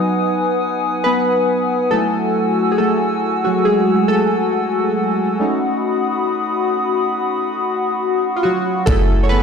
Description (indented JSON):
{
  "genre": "contemporary R&B",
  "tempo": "69 BPM",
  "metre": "4/4",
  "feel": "swing 54% on 16ths",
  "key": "F# dorian",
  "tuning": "A4 = 441 Hz",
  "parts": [
    { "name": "warm analog keys", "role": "accompaniment", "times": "0.0-9.4 s", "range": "F#3 to C#5", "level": "-18 LUFS", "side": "right 1 dB", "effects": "chorus" },
    { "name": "hollow soft pad", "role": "sustained chords", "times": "0.0-9.4 s", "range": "F#4 to E6", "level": "-19 LUFS", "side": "left 4 dB", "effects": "chorus, sidechain pumping" },
    { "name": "warm 808-style bass", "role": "bass", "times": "8.9-9.4 s", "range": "F#1", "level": "-16 LUFS", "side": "equal", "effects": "none" },
    { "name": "smooth R&B drum kit", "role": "drums", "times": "8.9-9.1 s", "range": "hi-hat, kick drum", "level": "-18 LUFS", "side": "equal", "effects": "none" }
  ],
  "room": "light reverb, digital ambience",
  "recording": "played on a big sound system in a bare room, stone room reverb",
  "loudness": "-15 LUFS",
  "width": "side -6 dB against mid",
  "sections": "0.0-9.4 A section",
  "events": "synth keys solo 0.0-9.4",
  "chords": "0.0 G#m7; 1.9 F#m9; 5.4 B7; 8.9 F#m9"
}